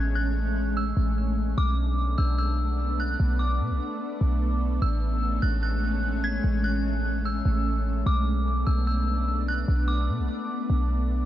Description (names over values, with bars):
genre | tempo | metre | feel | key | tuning
hip hop | 148 BPM | 4/4 | half-time | B dorian | A4 = 440 Hz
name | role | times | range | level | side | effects
ethereal airy pad | sustained chords | 0.0-11.3 s | G#3 to D4 | -30 LUFS | equal | ensemble chorus, built-in reverb
clean 808-style bass | bass | 0.0-11.3 s | A1 to B2 | -25 LUFS | equal | none
dark detuned synth bell | melody | 0.2-11.3 s | D6 to G#6 | -32 LUFS | equal | chorus, phaser, digital delay
room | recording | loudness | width
little or no reverb | none | -23 LUFS | side -13 dB against mid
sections
0.0-11.3 A section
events
none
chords
0.0 Amaj7; 1.6 Bm7; 4.8 Amaj7; 8.1 Bm7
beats
0.36 0.76 1.17 | 1.57 1.98 2.39 2.79 | 3.20 3.60 4.01 4.41 | 4.82 5.22 5.63 6.04 | 6.44 6.84 7.25 7.66 | 8.06 8.47 8.87 9.28 | 9.68 10.09 10.49 10.90